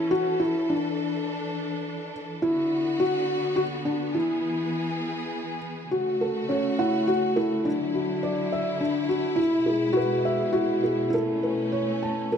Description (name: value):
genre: children's music, lullaby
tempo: 104 BPM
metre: 3/4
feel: rubato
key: unclear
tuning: A4 = 440 Hz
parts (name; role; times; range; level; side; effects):
- felt-muted upright piano; melody; 0.0-12.4 s; C#4 to A5; -24 LUFS; left 1 dB; none
- clear studio string section; sustained chords; 0.0-12.4 s; B2 to A4; -31 LUFS; equal; none
room: moderate scoring stage reverb, RT60 1.7 s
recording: dark, warm production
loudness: -23 LUFS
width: side -7 dB against mid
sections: 0.0-12.4 A section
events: none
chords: 0.0 A; 0.7 Dsus2; 2.4 Bm; 4.2 E; 5.9 F#m; 7.7 Dadd9; 9.4 E; 11.1 Aadd9